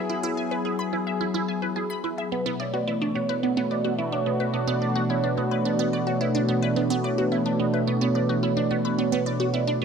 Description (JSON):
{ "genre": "ambient, sequencer-driven space music", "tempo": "108 BPM", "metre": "4/4", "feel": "straight", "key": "B minor", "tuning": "A4 = 444 Hz", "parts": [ { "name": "sweeping resonant pad", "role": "sustained chords", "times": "0.0-9.8 s", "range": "B2 to G#4", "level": "-25 LUFS", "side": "equal", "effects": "chorus" }, { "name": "resonant blip pluck", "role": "riff", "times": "0.0-9.8 s", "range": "B3 to B5", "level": "-28 LUFS", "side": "right 2 dB", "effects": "phaser, analog delay" }, { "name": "vibraphone with soft mallets", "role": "arpeggios", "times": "2.3-9.8 s", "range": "B4 to C#6", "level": "-30 LUFS", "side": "moving between equal and right 9 dB", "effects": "auto-pan, analog delay" } ], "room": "wet plate reverb, RT60 2.8 s", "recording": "none", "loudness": "-22 LUFS", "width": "side -6 dB against mid", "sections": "0.0-9.8 A section", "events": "none", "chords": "0.0 E; 2.3 Bmadd9" }